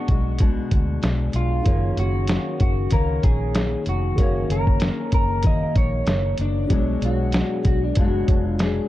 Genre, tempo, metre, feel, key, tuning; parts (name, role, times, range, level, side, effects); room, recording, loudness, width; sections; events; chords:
indie pop, bedroom pop; 95 BPM; 4/4; swing 55% on 16ths; F# major; A4 = 440 Hz
electric guitar through a small old amp; melody; 0.0-8.9 s; D4 to D#5; -27 LUFS; left 1 dB; wide subtle chorus, tape echo
fingerpicked steel-string acoustic guitar; accompaniment; 0.0-8.9 s; F#2 to F#4; -27 LUFS; left 3 dB; lush chorus, warbly pitch drift
vintage muted fingered electric bass; bass; 0.1-8.8 s; E#1 to D2; -24 LUFS; equal
lo-fi sampler-style drum kit; drums; 0.1-8.8 s; hi-hat, kick drum, snare drum; -20 LUFS; equal; vintage 12-bit sampler grit
tine electric piano; accompaniment; 1.6-8.9 s; D#3 to C#5; -34 LUFS; right 3 dB; medium stereo tremolo, cassette tape
light reverb, digital ambience; dark, warm production, lossy compression artefacts; -18 LUFS; side -15 dB against mid
0.0-8.9 A section
0.0 Bm6; 1.7 F#6; 6.7 Bm6